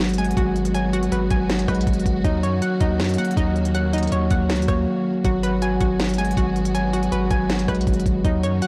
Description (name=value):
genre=hip hop, trap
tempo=160 BPM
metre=4/4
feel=half-time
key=unclear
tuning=A4 = 440 Hz
part: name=mellow tine electric piano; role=accompaniment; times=0.0-8.7 s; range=Gb3 to Gb4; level=-25 LUFS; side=equal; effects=none
part: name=warm symphonic string section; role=sustained chords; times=0.0-8.7 s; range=Eb3 to Gb4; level=-35 LUFS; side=equal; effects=none
part: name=hollow square pluck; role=arpeggios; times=0.0-8.7 s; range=Eb4 to Ab5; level=-30 LUFS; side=equal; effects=chorus, tape echo
part: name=long sustained 808-style bass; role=bass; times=0.0-8.6 s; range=Ab1 to Gb2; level=-27 LUFS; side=equal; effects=none
part: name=trap drum kit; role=drums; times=0.0-8.7 s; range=hi-hat, kick drum, rim click, snare drum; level=-26 LUFS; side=equal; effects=none
room=light reverb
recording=blown-out, overdriven recording, vinyl crackle, overdrive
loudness=-21 LUFS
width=mono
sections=0.0-8.7 A section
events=break 4.9-5.2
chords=0.0 Abm7; 2.2 Ebm7; 5.2 Abm7